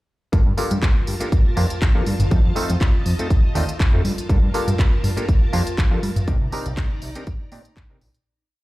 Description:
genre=filtered disco house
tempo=121 BPM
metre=4/4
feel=swing 54% on 16ths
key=G minor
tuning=A4 = 442 Hz
part: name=mellow clav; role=accompaniment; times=0.3-8.0 s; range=A3 to D5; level=-28 LUFS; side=equal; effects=phaser, sidechain pumping
part: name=string machine, full ensemble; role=sustained chords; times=0.3-8.2 s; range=Eb4 to Bb5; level=-32 LUFS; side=equal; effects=ensemble chorus, vintage 12-bit sampler grit, sidechain pumping
part: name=fat analog bass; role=bass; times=0.3-8.1 s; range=F1 to C3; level=-21 LUFS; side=equal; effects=sidechain pumping
part: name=electronic kick drum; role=drums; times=0.3-7.9 s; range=none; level=-18 LUFS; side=equal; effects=studio reverb
part: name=house drum kit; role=drums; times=0.3-8.2 s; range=handclaps, hi-hat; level=-31 LUFS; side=equal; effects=sidechain pumping on hats, studio reverb
room=little or no reverb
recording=played on a big sound system in a bare room, large studio reverb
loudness=-17 LUFS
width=side -18 dB against mid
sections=0.3-8.3 drop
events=drop 0.3-8.3; fade-out 5.6-8.3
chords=0.3 Gm9; 2.3 F7; 4.0 Gm9; 6.3 Cm9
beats=| 0.33 0.82 1.32 1.82 | 2.31 2.81 3.31 3.80 | 4.30 4.79 5.29 5.78 | 6.28 6.78 7.27 7.77

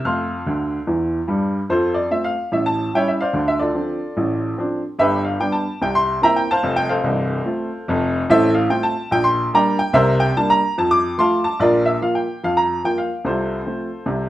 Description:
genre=jazz, stride piano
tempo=146 BPM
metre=4/4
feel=swing 61% on 8ths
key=F major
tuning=A4 = 443 Hz
part: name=clear upright piano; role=solo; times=0.0-14.3 s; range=C1 to F6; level=-17 LUFS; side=equal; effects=none
room=wet studio reverb, RT60 0.7 s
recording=heard from further back in the room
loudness=-17 LUFS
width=side -14 dB against mid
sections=0.0-1.7 A section; 1.7-14.3 B section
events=upright piano fill 0.5-1.7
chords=0.1 F; 2.5 A7; 3.3 Dm7; 5.0 G; 5.8 C7; 6.6 F; 8.3 F/A; 9.1 Gm/Bb; 10.0 Csus2; 10.8 F; 11.6 Bb5; 13.2 F/C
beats=| 0.06 0.47 0.88 1.29 | 1.70 2.11 2.52 2.93 | 3.35 3.76 4.17 4.58 | 5.00 5.41 5.82 6.23 | 6.65 7.06 7.47 7.89 | 8.30 8.71 9.13 9.54 | 9.95 10.36 10.78 11.19 | 11.60 12.01 12.42 12.83 | 13.24 13.65 14.06

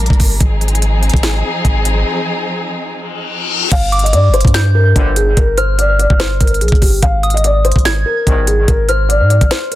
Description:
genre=hip hop, trap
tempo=145 BPM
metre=4/4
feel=half-time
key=G phrygian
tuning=A4 = 440 Hz
part: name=dark symphonic string section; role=sustained chords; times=0.0-3.7 s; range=F3 to Bb4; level=-19 LUFS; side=left 2 dB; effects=none
part: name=long sustained 808-style bass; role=bass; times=0.0-9.5 s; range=G1 to Ab2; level=-14 LUFS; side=equal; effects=none
part: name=trap drum kit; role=drums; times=0.1-9.8 s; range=crash cymbal, hi-hat, kick drum, snare drum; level=-14 LUFS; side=equal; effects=none
part: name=reverse cymbal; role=sound effects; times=3.1-3.7 s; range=none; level=-18 LUFS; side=left 7 dB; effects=none
part: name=felt-muted upright piano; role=melody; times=3.7-9.8 s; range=G4 to F5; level=-17 LUFS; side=left 2 dB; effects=low-pass filter, digital delay
part: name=soft synth bell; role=second line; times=3.9-9.8 s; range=D6 to Ab6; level=-20 LUFS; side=right 2 dB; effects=chorus, phaser, digital delay
part: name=warm brass ensemble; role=stabs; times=5.0-5.3, 8.3-8.6 s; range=Bb1 to Eb3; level=-24 LUFS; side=left 3 dB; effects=digital delay
room=little or no reverb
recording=dense, heavily limited modern master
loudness=-11 LUFS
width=side -15 dB against mid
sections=0.0-3.7 A section; 3.7-9.8 B section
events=break 2.1-3.7, 9.5; reverse cymbal 3.1-3.7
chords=0.4 Ab6; 3.7 Gm; 7.0 Ab6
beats=| 0.41 0.82 1.23 1.65 | 2.06 2.48 2.89 3.30 | 3.72 4.13 4.54 4.96 | 5.37 5.79 6.20 6.61 | 7.03 7.44 7.85 8.27 | 8.68 9.10 9.51

